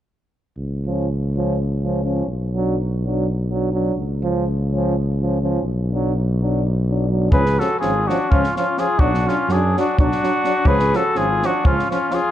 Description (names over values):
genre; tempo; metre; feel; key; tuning
balkan folk, Balkan brass band; 250 BPM (eighths); 7/8; straight; unclear; A4 = 440 Hz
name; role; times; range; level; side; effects
mellow tuba; bass; 0.6-11.8 s; G#1 to F#2; -21 LUFS; equal; none
clear trombone; accompaniment; 0.9-12.2 s; E#3 to F#3; -26 LUFS; right 6 dB; none
warm euphonium; accompaniment; 0.9-12.2 s; C#4 to D4; -27 LUFS; left 5 dB; none
clear flugelhorn; melody; 7.3-12.3 s; E#4 to B4; -20 LUFS; equal; none
mellow trumpet; second line; 7.3-12.3 s; C#4 to G#4; -24 LUFS; left 5 dB; none
compact cocktail drum kit; percussion; 7.3-12.2 s; kick drum, snare drum; -20 LUFS; equal; none
room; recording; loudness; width
light reverb; none; -17 LUFS; side -12 dB against mid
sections
0.6-7.3 A section; 7.3-12.3 B section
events
none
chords
0.6 C#; 2.3 Bm; 4.0 C#; 5.6 Bm; 7.3 C#; 9.0 Bm; 10.7 C#